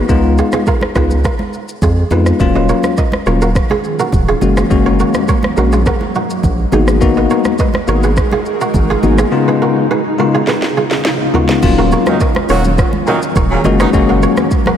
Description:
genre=afrobeats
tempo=104 BPM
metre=4/4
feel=straight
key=Eb minor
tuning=A4 = 440 Hz
part: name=bell-like tine electric piano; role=accompaniment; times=0.0-14.5 s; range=Db3 to Gb4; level=-15 LUFS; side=left 5 dB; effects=phaser
part: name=kora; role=riff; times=0.0-14.8 s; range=Eb4 to Eb5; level=-19 LUFS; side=right 4 dB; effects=analog delay
part: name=saturated sub bass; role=bass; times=0.1-14.3 s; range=Eb1 to F2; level=-15 LUFS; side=equal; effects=none
part: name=afro-pop drum kit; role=drums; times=0.1-14.8 s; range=crash cymbal, hi-hat, kick drum, rim click, shaker, snare drum, toms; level=-17 LUFS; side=equal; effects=none
part: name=congas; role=percussion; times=0.5-14.8 s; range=none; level=-24 LUFS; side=right 2 dB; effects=none
part: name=granular cloud pad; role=sustained chords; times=3.6-14.8 s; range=Db3 to Bb4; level=-19 LUFS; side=equal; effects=built-in reverb, lush chorus, sidechain pumping
part: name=warm horn section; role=second line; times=12.1-13.9 s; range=Bb2 to Gb4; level=-19 LUFS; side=right 2 dB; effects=analog delay
room=moderate lush hall reverb, RT60 1.9 s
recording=dreamy mix soaked in reverb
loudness=-11 LUFS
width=side -9 dB against mid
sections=0.0-2.4 A section; 2.4-11.6 B section; 11.6-14.8 C section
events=drum fill 10.5-11.6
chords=0.1 Db7; 2.4 Ebm7; 4.4 Gbadd9; 6.7 Abm7; 9.3 Db7; 11.6 Ebm7; 13.6 Gbadd9

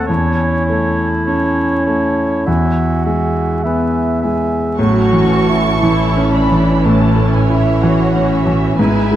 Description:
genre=classical, romantic movement for piano and orchestra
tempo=50-63 BPM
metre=4/4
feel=rubato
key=A major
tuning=A4 = 440 Hz
part: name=clear grand piano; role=melody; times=0.0-9.2 s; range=E2 to E4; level=-14 LUFS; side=left 1 dB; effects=none
part: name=clear clarinet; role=second line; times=0.0-3.6 s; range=E4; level=-21 LUFS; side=equal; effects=none
part: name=clear oboe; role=second line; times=0.0-4.8 s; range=C#5 to E5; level=-25 LUFS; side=right 2 dB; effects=none
part: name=mellow hollow concert flute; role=second line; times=0.0-4.8 s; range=G#5 to A5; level=-27 LUFS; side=right 1 dB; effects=none
part: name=mellow bassoon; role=accompaniment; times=0.1-4.8 s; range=C#4 to F#4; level=-23 LUFS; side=right 3 dB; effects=none
part: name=muted symphonic violin section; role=melody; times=4.8-9.2 s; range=E5 to C#6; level=-23 LUFS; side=right 1 dB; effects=none
part: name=muted symphonic violin section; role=second line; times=4.8-9.2 s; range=A4 to E5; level=-25 LUFS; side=left 1 dB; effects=none
part: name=muted symphonic viola section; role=accompaniment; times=4.8-9.2 s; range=E3 to E4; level=-21 LUFS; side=right 3 dB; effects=none
part: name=muted symphonic cello section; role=bass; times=4.8-9.2 s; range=E4 to F#4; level=-21 LUFS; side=right 3 dB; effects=none
part: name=muted symphonic double bass section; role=bass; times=4.8-9.2 s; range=G#1 to A1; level=-19 LUFS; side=right 2 dB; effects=none
room=moderate recital hall reverb, RT60 1.4 s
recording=close, detailed microphones, vinyl crackle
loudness=-12 LUFS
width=side -12 dB against mid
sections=0.0-4.8 A section; 4.8-9.2 B section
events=none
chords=0.1 A/E; 2.5 E; 4.8 A

